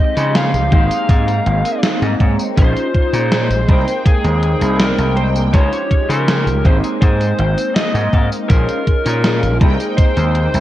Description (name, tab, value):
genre	vaporwave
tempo	81 BPM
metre	4/4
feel	straight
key	Ab major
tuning	A4 = 440 Hz
part	biting lead guitar	melody	0.0-10.6 s	Ab4 to F5	-21 LUFS	left 1 dB	overdrive, tape echo
part	mellow synth brass	accompaniment	0.0-10.6 s	F3 to G5	-21 LUFS	equal	phaser, wide subtle chorus, vintage 12-bit sampler grit, tape echo
part	clean electric guitar	riff	0.2-10.4 s	Db4 to Bb5	-26 LUFS	left 2 dB	analog chorus, vintage 12-bit sampler grit, tape echo
part	gritty slap bass	bass	0.2-10.6 s	Ab1 to Db3	-16 LUFS	equal	overdrive, tube saturation
part	gated 80s digital drum machine	drums	0.2-10.6 s	hi-hat, snare drum, tambourine	-21 LUFS	equal	gated reverb, gated reverb snare
part	electronic kick drum	drums	0.7-10.1 s	none	-13 LUFS	equal	none
room	light reverb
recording	cassette tape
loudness	-12 LUFS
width	side -14 dB against mid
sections	0.0-10.6 A section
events	clean electric guitar fill 0.4-2.6, 6.3-8.5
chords	0.0 Dbmaj9#11; 0.7 Abmaj7; 2.6 Bbm11; 3.7 Abmaj9/C; 5.5 Dbmaj9#11; 6.6 Abmaj7; 8.5 Bbm11; 9.6 Abmaj9/C